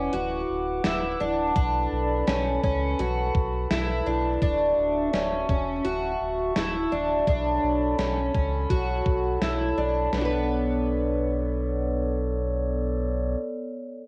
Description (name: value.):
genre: dream pop.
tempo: 84 BPM.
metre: 4/4.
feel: straight.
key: B minor.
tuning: A4 = 442 Hz.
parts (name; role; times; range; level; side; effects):
glass harmonica; sustained chords; 0.0-13.4 s; B3 to D6; -32 LUFS; equal; cassette tape.
fingerpicked twelve-string acoustic guitar; arpeggios; 0.0-13.5 s; B3 to B4; -29 LUFS; equal; analog chorus, cassette tape, tape echo.
sub bass with octave; bass; 0.0-13.4 s; D1 to C#2; -32 LUFS; equal; none.
gated 80s digital drum machine; drums; 0.1-10.3 s; hi-hat, kick drum, snare drum; -30 LUFS; equal; gated reverb, gated reverb snare, cassette tape.
room: moderate booth ambience, RT60 0.2 s.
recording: home recording on cassette.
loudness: -26 LUFS.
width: mono.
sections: 0.0-10.1 A section; 10.1-13.0 B section.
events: none.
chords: 0.0 Dadd9; 1.6 Bm9; 4.4 Dmaj9; 7.3 Bm9.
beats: 0.13 0.85 | 1.56 2.27 2.99 3.70 | 4.42 5.13 5.85 6.56 | 7.27 7.99 8.70 9.42 | 10.13 10.85 11.56 12.27.